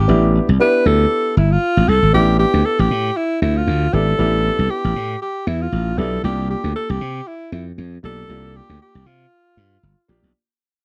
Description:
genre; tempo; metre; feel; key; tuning
early-eighties boogie funk; 117 BPM; 4/4; swing 56% on 16ths; A minor; A4 = 439 Hz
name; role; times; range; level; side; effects
clear alto saxophone; melody; 0.0-10.1 s; E4 to B4; -22 LUFS; equal; slapback echo
slap bass; bass; 0.0-10.3 s; G1 to C3; -19 LUFS; equal; none
warm concert grand piano; accompaniment; 0.1-10.3 s; Bb3 to G4; -25 LUFS; equal; none
room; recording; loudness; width
little or no reverb; dry, close 1970s-style studio recording; -17 LUFS; mono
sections
0.0-2.1 A section; 2.1-10.3 B section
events
fade-out 2.1-10.3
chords
0.0 A9sus4; 6.2 C9sus4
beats
| 0.09 0.60 1.11 1.62 | 2.14 2.65 3.16 3.67 | 4.19 4.70 5.21 5.73 | 6.24 6.75 7.26 7.78 | 8.29 8.80 9.32 9.83

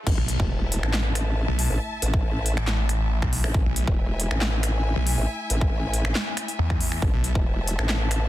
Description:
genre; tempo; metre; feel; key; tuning
heavy wobble dubstep; 138 BPM; 4/4; half-time; unclear; A4 = 436 Hz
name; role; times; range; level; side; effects
swell and impact; sound effects; 0.0-1.8 s; none; -32 LUFS; equal; none
clear studio string section; sustained chords; 0.1-8.3 s; A3 to A5; -33 LUFS; left 2 dB; sidechain pumping
formant-sweep wobble bass; bass; 0.1-8.3 s; E1 to A1; -25 LUFS; equal; chorus, overdrive
big-room dance drum kit; drums; 0.1-8.2 s; crash cymbal, finger snaps, handclaps, hi-hat, snare drum; -29 LUFS; equal; none
electronic kick drum; drums; 0.1-7.4 s; none; -24 LUFS; equal; none
snarling distorted saw bass; bass; 0.2-7.3 s; A1 to E2; -24 LUFS; equal; distortion, overdrive
room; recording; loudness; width
little or no reverb; dense, heavily limited modern master, high-pass filter; -22 LUFS; side -15 dB against mid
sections
0.1-8.3 A section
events
drop 0.1-8.3; impact 0.1-1.8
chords
0.1 A5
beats
| 0.07 0.50 0.94 1.37 | 1.80 2.24 2.67 3.11 | 3.54 3.98 4.41 4.85 | 5.28 5.72 6.15 6.59 | 7.02 7.46 7.89

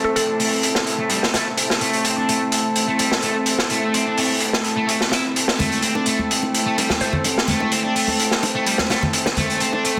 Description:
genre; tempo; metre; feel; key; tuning
breakbeat, breaks; 127 BPM; 4/4; straight; A minor; A4 = 440 Hz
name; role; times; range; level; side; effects
mallet-like synth pluck; melody; 0.0-0.2, 7.0-7.4 s; A4 to C5; -29 LUFS; equal; chorus, AM radio sound, cassette tape, delay
warbly tape-like pad; sustained chords; 0.0-10.0 s; A3 to G5; -29 LUFS; equal; chorus, built-in reverb
distorted electric guitar; riff; 0.0-10.0 s; G3 to E4; -27 LUFS; equal; distortion, low-pass filter, delay
mellow horn section; stabs; 0.0-10.0 s; A3 to A4; -28 LUFS; equal; vintage 12-bit sampler grit, low-pass filter, delay
downlifter; sound effects; 0.0-1.6 s; none; barely audible; none; none
raw garage drum kit; drums; 0.2-10.0 s; hi-hat, snare drum; -23 LUFS; equal; high-pass filter on kick, high-pass filter on hats, high-pass filter on snare, high-pass filter on room
bongos and congas; percussion; 5.6-10.0 s; none; -29 LUFS; equal; none
room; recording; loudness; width
wet lush hall reverb, RT60 2.0 s; dense, heavily limited modern master; -20 LUFS; mono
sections
0.0-10.0 A section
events
filter sweep on horn section 0.0-10.0; filter sweep on ambient pad 0.0-10.0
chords
0.0 Am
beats
0.16 0.63 1.10 | 1.58 2.05 2.52 2.99 | 3.47 3.94 4.41 4.88 | 5.36 5.83 6.30 6.77 | 7.25 7.72 8.19 8.66 | 9.14 9.61

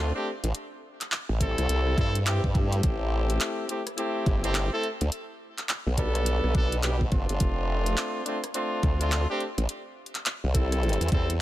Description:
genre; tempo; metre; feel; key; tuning
glitch hop; 105 BPM; 4/4; swing 62% on 16ths; unclear; A4 = 440 Hz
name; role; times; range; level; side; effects
warm horn section; stabs; 0.0-11.3 s; G3 to A4; -30 LUFS; left 1 dB; vintage 12-bit sampler grit, sidechain pumping, digital delay
formant-sweep wobble bass; bass; 0.0-11.4 s; F1 to G2; -26 LUFS; equal; chorus, tube saturation
pop drum kit; drums; 0.4-11.4 s; handclaps, hi-hat, rim click; -32 LUFS; equal; overdrive
electronic kick drum; drums; 1.4-11.3 s; none; -26 LUFS; equal; overdrive
room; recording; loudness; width
little or no reverb; none; -24 LUFS; side -14 dB against mid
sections
0.0-11.4 A section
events
none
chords
0.0 F6; 0.5 C; 2.8 Am7; 5.1 G; 7.4 F6; 9.7 C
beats
| 0.55 1.12 1.69 2.26 | 2.83 3.40 3.98 4.55 | 5.12 5.69 6.26 6.83 | 7.40 7.97 8.55 9.12 | 9.69 10.26 10.83 11.40

